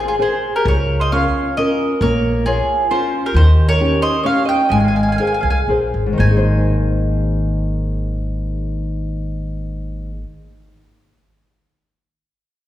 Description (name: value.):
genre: italian folk, Italian serenade.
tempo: 112-136 BPM.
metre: 3/4.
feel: straight.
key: Ab major.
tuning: A4 = 440 Hz.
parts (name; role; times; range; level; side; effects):
mandolin; melody; 0.0-10.2 s; Ab4 to Ab5; -20 LUFS; right 1 dB; none.
mandolin; second line; 0.0-10.2 s; Eb4 to F5; -24 LUFS; right 4 dB; none.
nylon-string guitar; accompaniment; 0.0-10.4 s; Ab2 to Db5; -20 LUFS; left 2 dB; none.
upright bass; bass; 0.7-10.2 s; Ab1 to Eb2; -18 LUFS; equal; none.
room: wet recital hall reverb, RT60 1.9 s.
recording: heard from further back in the room.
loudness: -15 LUFS.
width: side -13 dB against mid.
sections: 0.7-6.2 A section; 6.2-9.3 B section.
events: slowing down 3.4-6.2.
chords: 0.0 Abadd9; 0.7 Db6; 2.0 Bbm; 3.4 Eb7; 4.7 Abadd9.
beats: 0.21 | 0.67 1.12 1.57 | 2.02 2.47 2.91 | 3.35 3.79 4.24 | 4.70 5.18 5.68 | 6.20 6.73 7.25 | 7.78 8.30 8.82.